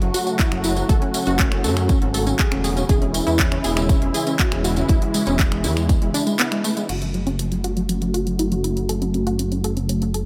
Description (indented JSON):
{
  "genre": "progressive house",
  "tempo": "120 BPM",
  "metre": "4/4",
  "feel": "straight",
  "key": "F# minor",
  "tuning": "A4 = 438 Hz",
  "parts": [
    { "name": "filtered supersaw swell", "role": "sustained chords", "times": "0.0-10.3 s", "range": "C#3 to F#4", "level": "-28 LUFS", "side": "equal", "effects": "sidechain pumping, low-pass filter" },
    { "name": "unison pluck", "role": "arpeggios", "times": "0.0-10.2 s", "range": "F#3 to A4", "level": "-27 LUFS", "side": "equal", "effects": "sidechain pumping, dub echo" },
    { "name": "dark detuned saw bass", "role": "bass", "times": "0.0-10.3 s", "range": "E1 to F#2", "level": "-27 LUFS", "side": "equal", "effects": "sidechain pumping" },
    { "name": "house drum kit", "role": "drums", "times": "0.0-10.2 s", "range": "crash cymbal, finger snaps, handclaps, hi-hat", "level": "-29 LUFS", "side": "equal", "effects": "studio reverb" },
    { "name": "tambourine", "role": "percussion", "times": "0.1-6.9 s", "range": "none", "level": "-33 LUFS", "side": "equal", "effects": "none" },
    { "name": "electronic kick drum", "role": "drums", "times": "0.4-6.0 s", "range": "none", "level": "-21 LUFS", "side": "equal", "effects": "studio reverb" }
  ],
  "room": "light reverb",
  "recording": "none",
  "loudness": "-20 LUFS",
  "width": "mono",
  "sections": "0.0-6.9 A section; 6.9-10.3 B section",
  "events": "filter sweep on supersaw synth 6.9-10.3",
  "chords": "0.0 F#m; 2.9 C#m/E; 6.9 F#m"
}